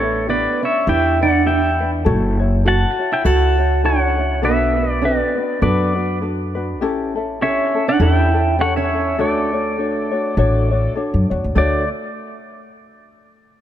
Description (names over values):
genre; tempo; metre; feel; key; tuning
Hawaiian; 101 BPM; 4/4; swing 57% on 8ths; D major; A4 = 441 Hz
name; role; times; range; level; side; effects
pedal steel guitar; melody; 0.0-11.9 s; A4 to A5; -20 LUFS; left 1 dB; dub echo
fingerpicked steel-string acoustic guitar; second line; 0.0-11.9 s; A3 to F#4; -23 LUFS; right 6 dB; dub echo
ukulele; accompaniment; 0.0-11.8 s; C#4 to C#5; -23 LUFS; left 3 dB; none
upright bass; bass; 0.0-11.9 s; F#1 to F#2; -18 LUFS; equal; none
room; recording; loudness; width
moderate echo chamber reverb, RT60 2.5 s; echo-heavy mix; -15 LUFS; side -11 dB against mid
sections
0.0-11.6 A section; 11.6-13.6 B section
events
none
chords
0.0 A9sus4; 2.1 F#m7; 4.4 Bm7; 6.8 A7; 9.2 Dmaj7